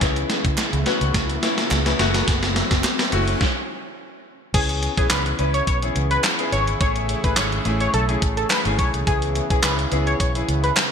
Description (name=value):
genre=dance-pop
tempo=106 BPM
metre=4/4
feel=straight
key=C# minor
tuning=A4 = 440 Hz
part: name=clear grand piano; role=accompaniment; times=0.0-10.8 s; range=A3 to B4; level=-26 LUFS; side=left 3 dB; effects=lush chorus, sidechain pumping
part: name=sweeping resonant pad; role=sustained chords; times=0.0-10.9 s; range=C#3 to G#4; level=-32 LUFS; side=right 2 dB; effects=chorus, sidechain pumping
part: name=vintage muted fingered electric bass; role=bass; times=0.0-10.7 s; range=F#1 to C#3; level=-24 LUFS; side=equal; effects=sidechain pumping
part: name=gated 80s digital drum machine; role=drums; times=0.0-10.9 s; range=crash cymbal, handclaps, hi-hat, kick drum, snare drum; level=-22 LUFS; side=equal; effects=gated reverb, gated reverb snare
part: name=riser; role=sound effects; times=0.0-3.4 s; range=none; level=-31 LUFS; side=equal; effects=none
part: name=group handclap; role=percussion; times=0.6-10.9 s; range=none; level=-33 LUFS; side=right 7 dB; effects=none
part: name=octave-doubled lead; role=melody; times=4.5-10.7 s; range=G#4 to C#5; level=-25 LUFS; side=equal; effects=chorus, sidechain pumping, ping-pong delay
room=light reverb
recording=bright 1980s-style digital production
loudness=-18 LUFS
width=side -7 dB against mid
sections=0.0-4.5 A section; 4.5-10.9 B section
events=build-up 0.0-4.5; drum fill 0.0-3.4; riser 0.0-4.5; stop 3.4-4.5; drop 4.5-10.9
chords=0.0 C#m7; 2.0 F#m7; 4.5 C#m7; 6.8 Amaj7; 9.1 C#m7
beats=| 0.01 0.58 1.15 1.71 | 2.28 2.84 3.41 3.98 | 4.54 5.11 5.67 6.24 | 6.81 7.37 7.94 8.50 | 9.07 9.64 10.20 10.77